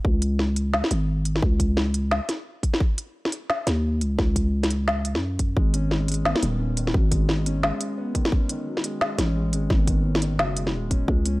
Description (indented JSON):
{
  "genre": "half-time drum and bass",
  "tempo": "174 BPM",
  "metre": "4/4",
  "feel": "swing 59% on 16ths, half-time",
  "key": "G# phrygian",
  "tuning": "A4 = 438 Hz",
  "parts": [
    { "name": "growling 808-style bass", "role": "bass", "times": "0.0-11.4 s", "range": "D#1 to F#2", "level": "-23 LUFS", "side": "equal", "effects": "none" },
    { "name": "electronic kick drum", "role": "drums", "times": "0.0-11.2 s", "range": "none", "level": "-22 LUFS", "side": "equal", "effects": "none" },
    { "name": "organic electronic drum kit", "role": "drums", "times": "0.2-11.3 s", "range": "hi-hat, snare drum", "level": "-25 LUFS", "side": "equal", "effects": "none" },
    { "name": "felt-muted upright piano", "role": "arpeggios", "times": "5.6-11.4 s", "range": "D#3 to C#4", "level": "-30 LUFS", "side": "equal", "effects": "analog delay" }
  ],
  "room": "little or no reverb",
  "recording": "dry, gritty hardware recording",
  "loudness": "-21 LUFS",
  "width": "side -20 dB against mid",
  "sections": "0.0-11.4 A section",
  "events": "none",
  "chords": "0.0 N.C.; 5.6 G#m"
}